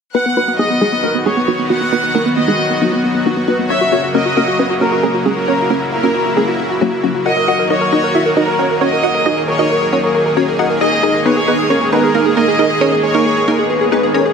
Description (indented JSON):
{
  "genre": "trance",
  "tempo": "135 BPM",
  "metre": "4/4",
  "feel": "straight",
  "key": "unclear",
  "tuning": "A4 = 440 Hz",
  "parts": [
    { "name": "wide unison pluck", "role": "melody", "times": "0.1-14.3 s", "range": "F#3 to F#5", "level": "-16 LUFS", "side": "moving between left 5 dB and right 7 dB", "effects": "auto-pan, tape echo" },
    { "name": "plucky unison lead", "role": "second line", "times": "0.1-14.3 s", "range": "B3 to F#5", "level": "-21 LUFS", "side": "equal", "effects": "tape echo" },
    { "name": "rich chamber violin section", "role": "second line", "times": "0.1-13.6 s", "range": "A#4 to F#5", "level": "-18 LUFS", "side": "left 1 dB", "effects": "digital delay" },
    { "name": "supersaw pad", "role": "sustained chords", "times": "0.1-14.3 s", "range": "C#3 to G#4", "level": "-19 LUFS", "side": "equal", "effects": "none" },
    { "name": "swell", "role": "sound effects", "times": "13.7-14.3 s", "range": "none", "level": "-20 LUFS", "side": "equal", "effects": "none" }
  ],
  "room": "moderate huge ambient reverb, RT60 7.9 s",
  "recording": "none",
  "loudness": "-12 LUFS",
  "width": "side -6 dB against mid",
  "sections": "0.1-14.3 A section",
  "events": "filter sweep on synth pluck 0.1-14.3; filter sweep on digital synth lead 0.1-14.3; swell 13.7-14.3",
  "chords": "0.1 B; 3.7 F#; 7.3 D#m; 10.8 G#sus2"
}